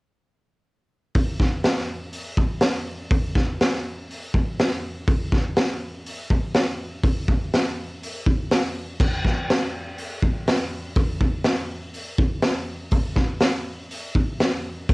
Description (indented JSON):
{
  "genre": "rock",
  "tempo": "122 BPM",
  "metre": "4/4",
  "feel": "straight",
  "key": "none",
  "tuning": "none",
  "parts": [
    { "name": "raw garage drum kit", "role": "drums", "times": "1.1-14.9 s", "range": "crash cymbal, hi-hat, kick drum, snare drum", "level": "-21 LUFS", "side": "equal", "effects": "cassette tape" }
  ],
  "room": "moderate studio reverb, RT60 0.6 s",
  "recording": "home recording on cassette",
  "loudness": "-21 LUFS",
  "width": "side -25 dB against mid",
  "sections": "1.1-14.9 A section",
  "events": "none",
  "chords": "none"
}